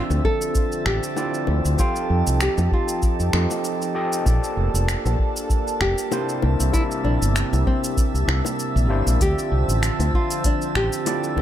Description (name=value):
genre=sunset chillout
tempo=97 BPM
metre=4/4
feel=swing 56% on 16ths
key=D minor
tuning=A4 = 439 Hz
part: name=nylon-string guitar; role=melody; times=0.0-11.3 s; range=C4 to A4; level=-27 LUFS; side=left 1 dB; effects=ping-pong delay
part: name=overdriven tine electric piano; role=accompaniment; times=0.0-11.4 s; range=C3 to G5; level=-28 LUFS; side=moving between left 3 dB and right 4 dB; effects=auto-pan, vintage 12-bit sampler grit, ping-pong delay
part: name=lush unison pad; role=sustained chords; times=0.0-11.4 s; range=C3 to E5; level=-29 LUFS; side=equal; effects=chorus
part: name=drifting glass-harmonics texture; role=texture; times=0.1-11.4 s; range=A5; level=-34 LUFS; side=right 4 dB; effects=chorus, built-in reverb
part: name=fingered electric bass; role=bass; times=0.1-11.4 s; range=F1 to F2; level=-21 LUFS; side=equal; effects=tube saturation
part: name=smooth R&B drum kit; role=drums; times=0.1-11.3 s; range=finger snaps, hi-hat, shaker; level=-29 LUFS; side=equal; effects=small room ambience
part: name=bongos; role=percussion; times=0.1-11.4 s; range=none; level=-31 LUFS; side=left 8 dB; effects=none
part: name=electronic kick drum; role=drums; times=0.2-10.9 s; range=none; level=-22 LUFS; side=equal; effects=small room ambience
room=little or no reverb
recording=none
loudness=-19 LUFS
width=side -11 dB against mid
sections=0.0-11.4 A section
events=none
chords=0.0 Dm9; 1.8 F9; 4.3 Bbmaj13; 6.4 C7; 9.2 Dm9